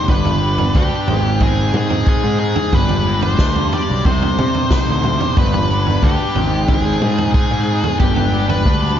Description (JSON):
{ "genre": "psychedelic rock", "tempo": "91 BPM", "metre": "4/4", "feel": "straight", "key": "unclear", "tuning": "A4 = 441 Hz", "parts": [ { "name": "octave-fuzz lead guitar", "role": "melody", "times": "0.0-9.0 s", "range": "G4 to D5", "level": "-21 LUFS", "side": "left 1 dB", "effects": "distortion, tape echo" }, { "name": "overdriven tonewheel organ", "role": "sustained chords", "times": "0.0-9.0 s", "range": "G3 to B5", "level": "-28 LUFS", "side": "right 4 dB", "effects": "slow rotary speaker, chorus vibrato" }, { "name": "fuzz guitar", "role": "riff", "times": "0.0-9.0 s", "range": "G2 to Ab4", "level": "-21 LUFS", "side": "left 2 dB", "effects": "distortion, phaser" }, { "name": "fuzz picked electric bass", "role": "bass", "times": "0.1-9.0 s", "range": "G1 to C3", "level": "-19 LUFS", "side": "equal", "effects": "overdrive" }, { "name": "vintage drum kit", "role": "drums", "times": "0.1-8.8 s", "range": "kick drum, snare drum, toms", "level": "-18 LUFS", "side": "right 1 dB", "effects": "none" } ], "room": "light reverb, small room ambience", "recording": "nothing above 7.5 kHz", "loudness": "-14 LUFS", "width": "side -10 dB against mid", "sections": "0.0-9.0 A section", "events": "none", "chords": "0.1 G; 1.1 Ab; 2.7 G; 4.0 Cm; 5.4 G; 6.4 Ab; 8.0 G" }